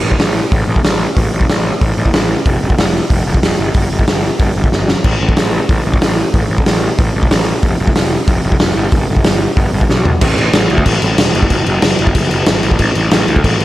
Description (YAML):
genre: punk rock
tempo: 186 BPM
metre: 4/4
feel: straight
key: unclear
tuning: A4 = 439 Hz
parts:
  - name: fuzz picked electric bass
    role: bass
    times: 0.0-13.6 s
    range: E1 to D2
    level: -16 LUFS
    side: equal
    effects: overdrive
  - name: raw garage drum kit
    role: drums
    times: 0.1-13.6 s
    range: crash cymbal, hi-hat, kick drum, snare drum, toms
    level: -12 LUFS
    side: equal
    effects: none
room: little or no reverb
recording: none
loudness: -11 LUFS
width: side -15 dB against mid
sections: 0.0-10.2 A section; 10.2-13.6 B section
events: drum fill 4.7-5.0, 9.9-10.2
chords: none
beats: 0.20 0.52 0.84 | 1.17 1.49 1.81 2.14 | 2.46 2.78 3.11 3.43 | 3.75 4.08 4.40 4.72 | 5.05 5.37 5.69 6.02 | 6.34 6.66 6.99 7.31 | 7.63 7.96 8.28 8.60 | 8.92 9.25 9.57 9.89 | 10.22 10.54 10.86 11.18 | 11.51 11.83 12.15 12.47 | 12.80 13.12 13.44